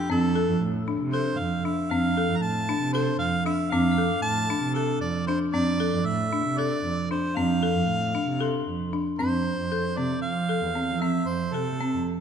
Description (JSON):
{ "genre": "contemporary instrumental, chamber music in an uneven meter", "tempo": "230 BPM (eighths)", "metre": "7/8", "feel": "straight", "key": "F major", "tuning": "A4 = 440 Hz", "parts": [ { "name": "clear harmonica", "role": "melody", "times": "0.0-12.1 s", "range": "A4 to Bb5", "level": "-29 LUFS", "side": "right 1 dB", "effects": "none" }, { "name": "folk marimba with hard mallets", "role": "arpeggios", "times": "0.0-12.2 s", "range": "C4 to A4", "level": "-27 LUFS", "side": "left 3 dB", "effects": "none" }, { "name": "glockenspiel with brass mallets", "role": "texture", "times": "0.0-0.7, 3.7-11.6 s", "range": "C6 to G6", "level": "-42 LUFS", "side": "left 7 dB", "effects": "none" }, { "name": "muted cello", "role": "bass", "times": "0.1-12.1 s", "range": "E2 to F3", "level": "-28 LUFS", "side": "right 4 dB", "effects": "none" } ], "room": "moderate concert hall reverb, RT60 2.0 s", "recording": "dark, warm production", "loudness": "-23 LUFS", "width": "side -7 dB against mid", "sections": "0.0-9.2 A section; 9.2-12.2 B section", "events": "none", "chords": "0.0 F6; 9.2 F", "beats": "| 0.10 0.35 0.61 0.87 1.13 1.39 1.65 | 1.91 2.17 2.43 2.69 2.94 3.20 3.46 | 3.72 3.98 4.24 4.50 4.76 5.02 5.28 | 5.54 5.80 6.06 6.32 6.58 6.84 7.11 | 7.37 7.63 7.89 8.15 8.41 8.67 8.93 | 9.19 9.46 9.72 9.98 10.24 10.50 10.76 | 11.02 11.29 11.55 11.81 12.07" }